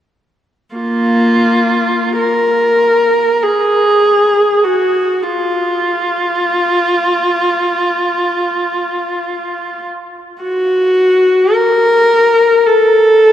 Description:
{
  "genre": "classical, free, expressive piece for unaccompanied viola",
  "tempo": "free time",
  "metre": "none",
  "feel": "none",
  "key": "unclear",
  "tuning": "A4 = 439 Hz",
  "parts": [
    { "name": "clear viola", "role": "solo", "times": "0.8-13.3 s", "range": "Bb3 to Bb4", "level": "-10 LUFS", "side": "equal", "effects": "none" }
  ],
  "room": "wet cathedral reverb, RT60 4.6 s",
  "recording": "dark, warm production",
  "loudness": "-10 LUFS",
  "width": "side -10 dB against mid",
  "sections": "0.8-13.3 A section",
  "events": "none",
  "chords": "none"
}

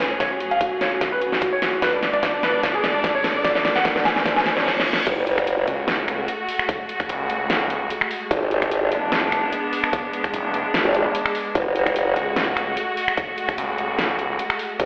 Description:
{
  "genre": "heavy wobble dubstep",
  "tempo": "148 BPM",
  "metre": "4/4",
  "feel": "swing 54% on 16ths, half-time",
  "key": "F# minor",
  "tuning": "A4 = 440 Hz",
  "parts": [
    { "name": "warm grand piano", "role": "melody", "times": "0.0-4.6 s", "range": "C#4 to G#5", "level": "-21 LUFS", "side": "equal", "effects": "low-pass filter, digital delay" },
    { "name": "clear studio string section", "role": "sustained chords", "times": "0.0-14.9 s", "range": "F#2 to D5", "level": "-26 LUFS", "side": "equal", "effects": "sidechain pumping" },
    { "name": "big-room dance drum kit", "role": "drums", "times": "0.0-14.9 s", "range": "crash cymbal, finger snaps, hi-hat, snare drum", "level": "-23 LUFS", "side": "equal", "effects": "none" },
    { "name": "riser, reverse cymbal and impact", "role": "sound effects", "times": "1.2-6.7 s", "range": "none", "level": "-31 LUFS", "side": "equal", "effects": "none" },
    { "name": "electronic kick drum", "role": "drums", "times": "0.2-14.9 s", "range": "none", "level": "-26 LUFS", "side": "equal", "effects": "none" },
    { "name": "formant-sweep wobble bass", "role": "bass", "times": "5.1-5.7, 8.3-12.1, 14.8-14.9 s", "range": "F#1 to G#1", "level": "-19 LUFS", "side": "equal", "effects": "chorus, overdrive" },
    { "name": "snarling distorted saw bass", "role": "bass", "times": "5.7-14.4 s", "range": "F#1 to C#2", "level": "-26 LUFS", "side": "equal", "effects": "overdrive" }
  ],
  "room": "wet plate reverb, RT60 1.1 s, digital ambience",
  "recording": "played on a big sound system in a bare room, stone room reverb, telephone sound",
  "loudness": "-19 LUFS",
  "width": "side -36 dB against mid",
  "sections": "0.0-5.1 A section; 5.1-14.9 B section",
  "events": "build-up 0.0-5.1; drum fill 0.0-4.7, 4.7-5.1; reverse cymbal 4.3-5.1; drop 5.1-14.9; impact 5.1-6.7",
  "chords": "0.0 F#madd9; 1.8 G#dim; 5.1 F#madd9; 8.3 G#dim; 11.6 F#madd9"
}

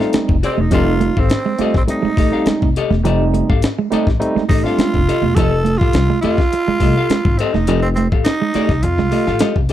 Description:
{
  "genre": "funk",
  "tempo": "104 BPM",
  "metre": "4/4",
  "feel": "straight",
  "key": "F mixolydian",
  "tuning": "A4 = 440 Hz",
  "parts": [
    { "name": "growling tenor saxophone", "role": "melody", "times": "0.0-9.7 s", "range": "C4 to A4", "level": "-20 LUFS", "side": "right 3 dB", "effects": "none" },
    { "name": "vintage hollow-body jazz guitar", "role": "accompaniment", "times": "0.0-9.7 s", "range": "G4 to F5", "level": "-23 LUFS", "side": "left 8 dB", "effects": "none" },
    { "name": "barky tine electric piano", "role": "stabs", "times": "0.0-5.0 s", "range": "G3 to F4", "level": "-21 LUFS", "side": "right 3 dB", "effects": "overdrive, auto-pan" },
    { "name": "breakbeat sampler-style drum kit", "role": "drums", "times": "0.0-9.7 s", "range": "hi-hat, kick drum, snare drum", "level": "-18 LUFS", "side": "left 1 dB", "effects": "none" },
    { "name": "clean electric guitar", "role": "riff", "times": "0.1-9.6 s", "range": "F3 to A3", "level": "-20 LUFS", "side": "right 7 dB", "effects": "none" },
    { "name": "upright bass", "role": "bass", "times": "0.1-9.7 s", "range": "Eb1 to F2", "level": "-19 LUFS", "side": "left 1 dB", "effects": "none" }
  ],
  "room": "little or no reverb",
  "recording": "dry, close 1970s-style studio recording",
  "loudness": "-13 LUFS",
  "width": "side -12 dB against mid",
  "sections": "0.0-9.7 A section",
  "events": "none",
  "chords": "0.0 F9"
}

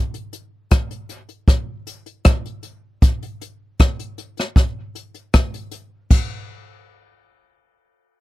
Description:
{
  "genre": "reggae",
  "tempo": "78 BPM",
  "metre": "4/4",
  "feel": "straight",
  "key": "none",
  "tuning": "none",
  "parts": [
    { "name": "jazz brush drum kit", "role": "drums", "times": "0.1-6.3 s", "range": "crash cymbal, hi-hat, kick drum, rim click", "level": "-16 LUFS", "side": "equal", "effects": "none" }
  ],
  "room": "little or no reverb",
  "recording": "dry, close 1970s-style studio recording",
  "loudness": "-17 LUFS",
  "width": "side -18 dB against mid",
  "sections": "0.0-6.1 A section; 6.1-8.2 B section",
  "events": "none",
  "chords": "none"
}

